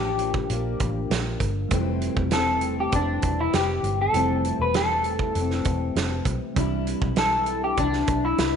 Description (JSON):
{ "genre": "indie pop, bedroom pop", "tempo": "99 BPM", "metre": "4/4", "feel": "straight", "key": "unclear", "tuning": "A4 = 439 Hz", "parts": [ { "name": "electric guitar through a small old amp", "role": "melody", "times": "0.0-8.6 s", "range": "D4 to B4", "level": "-25 LUFS", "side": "left 2 dB", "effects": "analog chorus, slapback echo" }, { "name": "fingerpicked plugged-in steel-string acoustic guitar", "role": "accompaniment", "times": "0.0-8.6 s", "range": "F2 to E4", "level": "-30 LUFS", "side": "left 9 dB", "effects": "lush chorus, vibrato effect" }, { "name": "tine electric piano", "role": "accompaniment", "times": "0.0-8.6 s", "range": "F3 to F4", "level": "-33 LUFS", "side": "right 14 dB", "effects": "medium stereo tremolo, cassette tape" }, { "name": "vintage muted fingered electric bass", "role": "bass", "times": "0.0-8.6 s", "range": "E1 to C2", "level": "-28 LUFS", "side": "equal", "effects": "none" }, { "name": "loose indie drum kit", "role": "drums", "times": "0.2-8.5 s", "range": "hi-hat, kick drum, snare drum", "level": "-28 LUFS", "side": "right 3 dB", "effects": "none" } ], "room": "moderate plate reverb, RT60 1.5 s, small room ambience", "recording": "1960s-style stereo with parts hard left and right, nothing above 10.8 kHz", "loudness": "-22 LUFS", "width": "side -7 dB against mid", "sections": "0.0-6.6 A section; 6.6-8.6 A section", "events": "none", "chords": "0.0 Bb; 1.7 Fmaj7; 6.6 Cadd9", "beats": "0.50 1.11 | 1.71 2.32 2.92 3.53 | 4.14 4.74 5.35 5.96 | 6.56 7.17 7.78 8.38" }